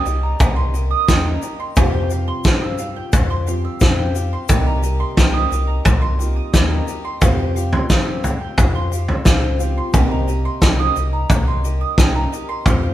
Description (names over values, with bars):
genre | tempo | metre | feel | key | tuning
indie folk with a building arrangement | 88 BPM | 4/4 | straight | C minor | A4 = 440 Hz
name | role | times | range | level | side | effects
felt-muted upright piano | accompaniment | 0.0-12.9 s | F1 to C5 | -30 LUFS | right 4 dB | none
picked twelve-string acoustic guitar | accompaniment | 0.0-12.9 s | C3 to G4 | -28 LUFS | left 7 dB | none
mandolin | arpeggios | 0.0-12.9 s | Eb5 to E6 | -26 LUFS | right 6 dB | none
fingered electric bass | bass | 0.1-12.9 s | C2 to G2 | -21 LUFS | equal | none
egg shaker | percussion | 0.1-12.8 s | none | -34 LUFS | left 9 dB | none
loose indie drum kit | drums | 0.4-12.8 s | kick drum, snare drum, toms | -16 LUFS | equal | none
room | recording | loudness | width
moderate stone room reverb, RT60 1.2 s | band playing live in one room | -15 LUFS | side -13 dB against mid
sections
0.0-12.9 A section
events
none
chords
0.0 Cm7; 1.8 Fsus2; 4.5 Cm7; 7.2 Fsus2; 9.9 Cm7